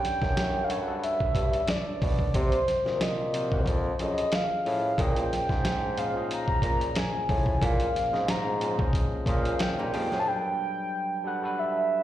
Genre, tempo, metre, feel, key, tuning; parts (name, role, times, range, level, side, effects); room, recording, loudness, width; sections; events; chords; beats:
R&B, neo-soul; 91 BPM; 4/4; swing 53% on 16ths; A4 = 440 Hz
mellow horn-like synth lead; melody; 0.0-12.0 s; C5 to Bb5; -29 LUFS; right 1 dB; chorus, slapback echo, tape echo
barky tine electric piano; accompaniment; 0.0-12.0 s; Bb2 to Gb5; -33 LUFS; left 2 dB; overdrive, slapback echo
dusty soul sampler-style drum kit; drums; 0.0-10.2 s; hi-hat, kick drum, snare drum; -28 LUFS; equal
warm bassoon; bass; 0.2-10.2 s; F2 to C3; -31 LUFS; equal
nylon-string guitar; second line; 9.8-10.4 s; G3 to Ab4; -36 LUFS; right 6 dB; slapback echo
light reverb; live gig heard through the venue's PA, recital hall reverb; -25 LUFS; side -12 dB against mid
0.0-10.3 A section; 10.3-12.0 A section
0.0 Gmaj9#11; 2.3 Cm7b5; 3.7 F7alt; 5.0 Bbm11; 10.3 Gmaj7
0.36 1.02 1.68 | 2.34 3.00 3.66 4.32 | 4.98 5.64 6.30 6.96 | 7.62 8.28 8.94 9.59 | 10.25 10.91 11.57